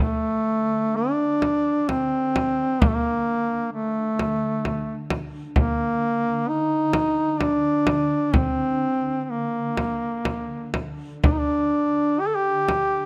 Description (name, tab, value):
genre	caucasian folk, Caucasian lament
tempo	64 BPM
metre	3/4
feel	uneven beats, rubato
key	unclear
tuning	A4 = 440 Hz
part	warm duduk	melody	0.0-13.1 s	A3 to A4	-24 LUFS	equal	none
part	shimmering ambient pad	drone	0.3-13.1 s	D3	-37 LUFS	equal	chorus, built-in reverb
part	frame drum	percussion	1.4-12.9 s	none	-25 LUFS	equal	none
room	light reverb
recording	close, detailed microphones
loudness	-23 LUFS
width	mono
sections	0.0-13.1 A section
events	none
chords	none